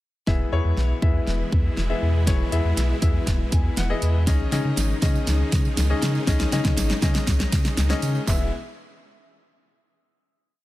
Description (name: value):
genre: dance-pop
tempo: 120 BPM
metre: 4/4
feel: straight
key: E major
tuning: A4 = 440 Hz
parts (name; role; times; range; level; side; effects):
- warm baby grand piano; accompaniment; 0.3-8.5 s; B3 to G#5; -29 LUFS; left 5 dB; none
- supersaw chords; sustained chords; 0.3-8.5 s; B2 to E4; -32 LUFS; right 1 dB; sidechain pumping
- warm sub bass; bass; 0.3-8.5 s; E1 to C#3; -23 LUFS; equal; sidechain pumping
- pop drum kit; drums; 0.3-8.4 s; handclaps, hi-hat, kick drum, snare drum; -23 LUFS; equal; none
- tambourine; percussion; 4.3-8.5 s; none; -38 LUFS; right 12 dB; none
room: little or no reverb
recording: none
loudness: -20 LUFS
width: side -16 dB against mid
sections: 0.3-8.3 build; 8.3-10.3 final chord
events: build-up 0.3-8.3; drum fill 0.3-8.3; grand piano fill 3.3-4.3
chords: 0.3 E; 4.3 C#sus2; 8.3 E